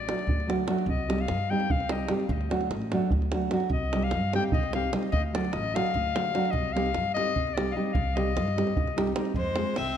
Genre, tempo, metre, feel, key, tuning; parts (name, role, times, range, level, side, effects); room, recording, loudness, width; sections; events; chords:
balkan folk, Balkan wedding band; 297 BPM (eighths); 7/8; straight; A4 = 441 Hz
bright clarinet; second line; 0.0-10.0 s; Ab3 to G5; -31 LUFS; left 6 dB; tape echo
upright bass; bass; 0.0-10.0 s; A1 to G2; -32 LUFS; equal
nylon-string guitar; accompaniment; 0.1-9.7 s; F#3 to Ab4; -29 LUFS; right 2 dB
davul; percussion; 0.1-9.9 s; -31 LUFS; right 2 dB
dark violin; melody; 9.4-10.0 s; C5 to E5; -30 LUFS; equal
moderate concert hall reverb, RT60 2.0 s; close, detailed microphones; -25 LUFS; side -9 dB against mid
0.0-9.4 A section
clarinet solo 0.0-9.4
0.0 D; 0.9 Cm; 2.3 D; 3.7 Cm; 5.1 D; 6.5 Cm; 9.4 Fm